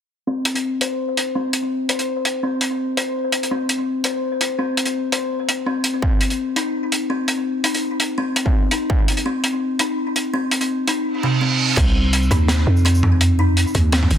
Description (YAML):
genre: half-time drum and bass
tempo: 167 BPM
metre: 4/4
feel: swing 55% on 16ths, half-time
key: C minor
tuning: A4 = 438 Hz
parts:
  - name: kalimba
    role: arpeggios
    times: 0.3-14.0 s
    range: C3 to C5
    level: -21 LUFS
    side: left 2 dB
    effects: low-pass filter, tape echo
  - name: crunchy breakbeat drum kit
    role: drums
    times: 0.5-14.2 s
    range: crash cymbal, hi-hat, shaker, snare drum, toms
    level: -20 LUFS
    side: right 1 dB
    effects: none
  - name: electronic kick drum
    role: drums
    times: 6.0-6.1, 8.5-9.0, 11.8-11.9 s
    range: none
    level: -18 LUFS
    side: equal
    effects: distortion
  - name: reverse cymbal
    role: sound effects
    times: 11.2-11.8 s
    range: none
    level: -21 LUFS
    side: right 6 dB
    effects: none
  - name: growling 808-style bass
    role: bass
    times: 11.8-14.2 s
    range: G1 to F2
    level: -16 LUFS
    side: right 1 dB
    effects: none
room: light reverb, small room ambience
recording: dense, heavily limited modern master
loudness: -17 LUFS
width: side -9 dB against mid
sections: 0.3-11.8 A section; 11.8-14.2 B section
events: filter sweep on kalimba 0.3-11.8; reverse cymbal 11.2-11.8; drop 11.8-14.2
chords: 0.3 Cm; 11.8 C5